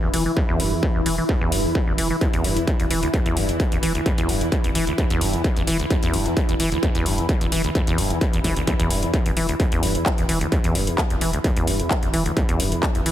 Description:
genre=driving peak-time techno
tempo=130 BPM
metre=4/4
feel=straight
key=E minor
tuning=A4 = 440 Hz
part: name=acid bass, saw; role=riff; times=0.0-13.1 s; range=D2 to E3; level=-24 LUFS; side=equal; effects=vintage 12-bit sampler grit, sidechain pumping, ping-pong delay
part: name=saturated sub bass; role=bass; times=0.0-13.1 s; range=E1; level=-28 LUFS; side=equal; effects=overdrive, sidechain pumping, low-pass filter
part: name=swarming drone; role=drone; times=0.0-13.1 s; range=E3 to E4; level=-27 LUFS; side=equal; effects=built-in reverb, sidechain pumping
part: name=techno drum kit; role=drums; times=0.1-13.1 s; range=handclaps, hi-hat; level=-28 LUFS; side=left 1 dB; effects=sidechain pumping on hats
part: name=electronic kick drum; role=drums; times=0.4-12.9 s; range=none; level=-21 LUFS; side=equal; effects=distortion
room=light reverb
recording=heavily compressed radio sound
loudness=-19 LUFS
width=side -12 dB against mid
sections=0.0-13.1 A section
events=none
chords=0.0 Em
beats=| 0.37 0.83 1.29 1.75 | 2.21 2.67 3.14 3.60 | 4.06 4.52 4.98 5.44 | 5.91 6.37 6.83 7.29 | 7.75 8.21 8.68 9.14 | 9.60 10.06 10.52 10.98 | 11.44 11.91 12.37 12.83

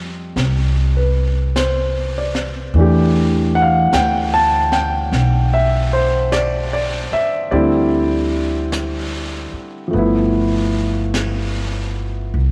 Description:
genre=jazz ballad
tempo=50 BPM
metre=4/4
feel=swing 67% on 8ths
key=G major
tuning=A4 = 440 Hz
part: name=warm grand piano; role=accompaniment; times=0.0-12.4 s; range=D3 to A5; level=-20 LUFS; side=equal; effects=none
part: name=upright bass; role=bass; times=0.0-12.5 s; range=G1 to F2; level=-21 LUFS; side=equal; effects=none
part: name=jazz brush drum kit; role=drums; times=0.4-12.5 s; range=brushed snare drum, hi-hat, snare drum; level=-30 LUFS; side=equal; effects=none
room=moderate plate reverb, RT60 2.8 s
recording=none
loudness=-17 LUFS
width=mono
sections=0.0-12.5 A section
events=none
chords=0.0 F7; 2.7 Em7; 7.5 D9sus4; 9.9 G13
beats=0.37 1.56 | 2.75 3.93 5.13 6.32 | 7.52 8.72 9.92 11.14 | 12.35

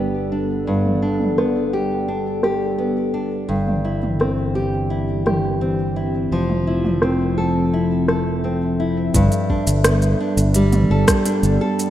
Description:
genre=folktronica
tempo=85 BPM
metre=4/4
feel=straight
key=G mixolydian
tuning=A4 = 439 Hz
part: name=warbly tape-like pad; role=sustained chords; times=0.0-11.9 s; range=E3 to E5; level=-23 LUFS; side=left 1 dB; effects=chorus, built-in reverb
part: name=nylon-string guitar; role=arpeggios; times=0.0-11.9 s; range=G2 to A4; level=-21 LUFS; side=equal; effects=vintage 12-bit sampler grit, low-pass filter, digital delay
part: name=fingered electric bass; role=bass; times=0.0-11.6 s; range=F1 to G1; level=-22 LUFS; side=equal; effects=none
part: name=organic electronic drum kit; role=drums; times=0.1-11.9 s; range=hi-hat, rim click, shaker, toms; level=-23 LUFS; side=equal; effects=overdrive, low-pass filter on hats, low-pass filter on perc, low-pass filter on snare, low-pass filter on toms
part: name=electronic kick drum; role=drums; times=9.1-11.2 s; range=none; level=-20 LUFS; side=equal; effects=overdrive
room=moderate plate reverb, RT60 2.5 s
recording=rough home demo mix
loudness=-17 LUFS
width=side -12 dB against mid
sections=0.0-9.1 A section; 9.1-11.9 B section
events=none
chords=0.0 Gadd9; 3.5 Cadd9/G; 6.3 Fmaj7; 9.1 Gadd9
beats=| 0.67 1.38 2.09 2.79 | 3.50 4.20 4.91 5.62 | 6.32 7.03 7.73 8.44 | 9.14 9.85 10.56 11.26

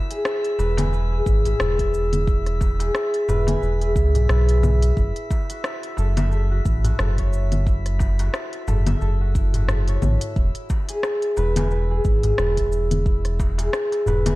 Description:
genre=organic downtempo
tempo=89 BPM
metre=4/4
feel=swing 57% on 16ths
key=unclear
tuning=A4 = 440 Hz
part: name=concert harp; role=arpeggios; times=0.0-14.4 s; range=E4 to G#5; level=-25 LUFS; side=left 1 dB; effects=tape echo
part: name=drifting glass-harmonics texture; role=texture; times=0.0-14.4 s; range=E5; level=-36 LUFS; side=right 1 dB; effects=chorus, built-in reverb
part: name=deep house drum kit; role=drums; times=0.1-14.4 s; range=congas, hi-hat, rim click, shaker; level=-28 LUFS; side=left 2 dB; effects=studio ambience
part: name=darbuka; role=percussion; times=0.2-14.4 s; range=none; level=-31 LUFS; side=left 1 dB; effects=none
part: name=round analog bass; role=bass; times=0.6-14.3 s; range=E1 to C#2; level=-20 LUFS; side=equal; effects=sidechain pumping
part: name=electronic kick drum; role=drums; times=1.3-13.6 s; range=none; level=-22 LUFS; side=equal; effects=studio ambience
room=light reverb, digital ambience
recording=dark, warm production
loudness=-18 LUFS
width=side -19 dB against mid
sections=0.0-14.4 A section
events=none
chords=0.0 E; 5.0 F#m7; 10.4 E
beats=0.25 0.93 1.60 | 2.27 2.95 3.62 4.29 | 4.97 5.64 6.32 6.99 | 7.67 8.34 9.01 9.69 | 10.36 11.04 11.71 12.38 | 13.06 13.73

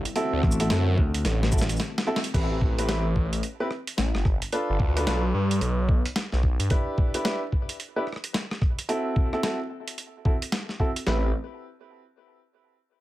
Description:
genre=glitch hop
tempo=110 BPM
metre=4/4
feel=swing 62% on 16ths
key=A minor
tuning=A4 = 439 Hz
part: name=warm analog pad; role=sustained chords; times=0.0-2.3 s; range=C3 to F#4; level=-36 LUFS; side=left 1 dB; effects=chorus, sidechain pumping
part: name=phased detuned saw bass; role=bass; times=0.0-6.7, 11.1-11.3 s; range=G1 to G2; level=-25 LUFS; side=equal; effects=phaser, overdrive
part: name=boom bap sampler-style drum kit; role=drums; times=0.1-11.0 s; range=crash cymbal, hi-hat, rim click, shaker, snare drum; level=-30 LUFS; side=equal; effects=none
part: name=clear baby grand piano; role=stabs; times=0.2-11.3 s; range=C4 to B4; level=-29 LUFS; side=equal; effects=sidechain pumping, low-pass filter, ping-pong delay
part: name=vintage slap bass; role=bass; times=0.4-1.2 s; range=A1 to D2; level=-26 LUFS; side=equal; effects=none
part: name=boom bap sampler-style drum kit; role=drums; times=0.4-11.2 s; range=kick drum, snare drum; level=-24 LUFS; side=equal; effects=none
room=little or no reverb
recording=none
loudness=-23 LUFS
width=side -16 dB against mid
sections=0.0-2.3 A section; 2.3-11.1 B section; 11.1-13.0 C section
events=drop 0.0-2.3; drum fill 1.3-2.3; break 1.8-2.3; band accent 2.2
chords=0.2 D7; 2.3 Am7; 4.5 G9; 6.7 G6/D; 8.9 C6; 11.1 Am7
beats=| 0.16 0.71 1.25 1.80 | 2.34 2.89 3.43 3.98 | 4.52 5.07 5.62 6.16 | 6.71 7.25 7.80 8.34 | 8.89 9.43 9.98 10.52 | 11.07

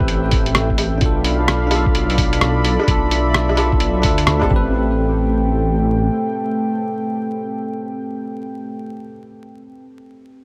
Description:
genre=future garage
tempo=129 BPM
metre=4/4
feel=swing 64% on 16ths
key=A minor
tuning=A4 = 441 Hz
part: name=bell-like tine electric piano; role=accompaniment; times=0.0-10.4 s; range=C4 to B4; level=-27 LUFS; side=equal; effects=sidechain pumping, digital delay
part: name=dark analog pad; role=sustained chords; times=0.0-8.9 s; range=A3 to B5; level=-25 LUFS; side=equal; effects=chorus, sidechain pumping
part: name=swelling detuned saw bass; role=bass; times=0.0-6.1 s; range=A1 to D2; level=-21 LUFS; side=equal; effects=sidechain pumping
part: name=electronic kick drum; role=drums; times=0.0-4.6 s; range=none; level=-21 LUFS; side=equal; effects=none
part: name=lo-fi sampler-style drum kit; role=drums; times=0.1-4.5 s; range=hi-hat, rim click, woodblock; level=-22 LUFS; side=equal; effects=none
room=light reverb, digital ambience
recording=vinyl crackle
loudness=-18 LUFS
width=mono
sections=0.0-4.7 A section; 4.7-8.5 B section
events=none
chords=0.0 Am7; 1.0 Bm7b5; 4.5 Am7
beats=0.09 0.55 | 1.02 1.48 1.95 2.41 | 2.88 3.34 3.81 4.28 | 4.74 5.21 5.67 6.13 | 6.60 7.07 7.53 8.00

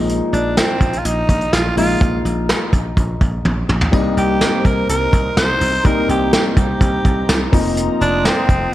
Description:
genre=1980s-style pop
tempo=125 BPM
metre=4/4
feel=straight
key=unclear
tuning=A4 = 440 Hz
part: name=warm baby grand piano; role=accompaniment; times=0.0-8.7 s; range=F3 to Eb4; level=-21 LUFS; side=left 2 dB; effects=none
part: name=dry thumbed slap bass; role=bass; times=0.0-8.7 s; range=F1 to C2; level=-21 LUFS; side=equal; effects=none
part: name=soft brush drum kit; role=drums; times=0.1-8.6 s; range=hi-hat, kick drum, snare drum, splash cymbal, toms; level=-17 LUFS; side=equal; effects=gated reverb
part: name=growling tenor saxophone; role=melody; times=0.3-8.7 s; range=C4 to C5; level=-20 LUFS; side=right 1 dB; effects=none
part: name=phased analog pad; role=sustained chords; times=3.9-8.7 s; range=Eb4 to Bb5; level=-28 LUFS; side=right 1 dB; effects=phaser, chorus
room=light reverb, small room ambience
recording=none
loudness=-14 LUFS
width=side -14 dB against mid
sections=0.0-8.7 A section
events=drum fill 3.5-3.9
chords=0.0 Bb7sus4; 3.9 Cm7; 7.5 F7sus4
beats=| 0.09 0.57 1.05 1.53 | 2.01 2.49 2.97 3.45 | 3.93 4.41 4.89 5.37 | 5.85 6.33 6.81 7.29 | 7.77 8.25 8.73

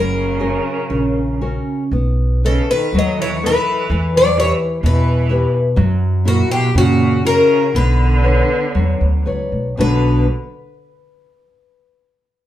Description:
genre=fado-style ballad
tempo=57-65 BPM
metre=2/4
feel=rubato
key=B minor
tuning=A4 = 440 Hz
part: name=picked twelve-string acoustic guitar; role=melody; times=0.0-10.3 s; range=F#4 to D#5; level=-18 LUFS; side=left 3 dB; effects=plate reverb
part: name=bright cello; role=second line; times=0.0-10.3 s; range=A#2 to F#3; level=-22 LUFS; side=right 4 dB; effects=none
part: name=nylon-string guitar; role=accompaniment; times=0.0-10.3 s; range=B2 to D#5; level=-19 LUFS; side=left 1 dB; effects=none
part: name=upright bass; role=bass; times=0.0-10.3 s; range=F#1 to F#2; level=-17 LUFS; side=equal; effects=none
room=wet studio reverb, RT60 0.6 s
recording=heard from further back in the room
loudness=-14 LUFS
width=side -12 dB against mid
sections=0.0-9.8 A section; 9.8-11.8 B section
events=none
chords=0.0 F#; 1.9 B7; 3.9 Em; 5.8 F#7; 7.7 Bmadd9; 9.8 Bm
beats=0.90 | 1.92 2.94 | 3.90 4.83 | 5.77 6.75 | 7.75 8.75 | 9.78

